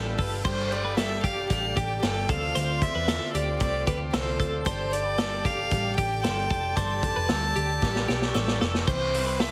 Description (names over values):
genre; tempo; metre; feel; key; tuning
jangly indie pop; 114 BPM; 4/4; straight; unclear; A4 = 440 Hz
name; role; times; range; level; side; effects
overdriven combo organ; accompaniment; 0.0-8.8 s; F4 to D5; -40 LUFS; equal; none
picked twelve-string acoustic guitar; accompaniment; 0.0-9.5 s; C3 to B4; -38 LUFS; equal; none
twelve-string electric guitar; arpeggios; 0.0-9.5 s; G4 to C5; -35 LUFS; equal; tremolo
vintage muted picked electric bass; bass; 0.0-9.5 s; F1 to E2; -34 LUFS; equal; none
vintage drum kit; drums; 0.2-9.5 s; crash cymbal, hi-hat, kick drum, snare drum; -32 LUFS; equal; none
warm violin; melody; 0.5-9.5 s; B4 to A5; -32 LUFS; equal; none
glockenspiel with hard plastic mallets; second line; 4.7-9.5 s; A5 to E6; -42 LUFS; equal; none
room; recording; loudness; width
light reverb; heavily compressed radio sound; -26 LUFS; mono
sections
0.5-8.9 A section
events
drum fill 7.8-8.9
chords
0.5 Gsus2; 2.3 Dm7; 4.7 Gsus2; 8.9 Cmaj7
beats
| 0.45 0.98 1.50 2.03 | 2.56 3.08 3.61 4.13 | 4.66 5.19 5.71 6.24 | 6.77 7.30 7.82 8.35 | 8.88 9.40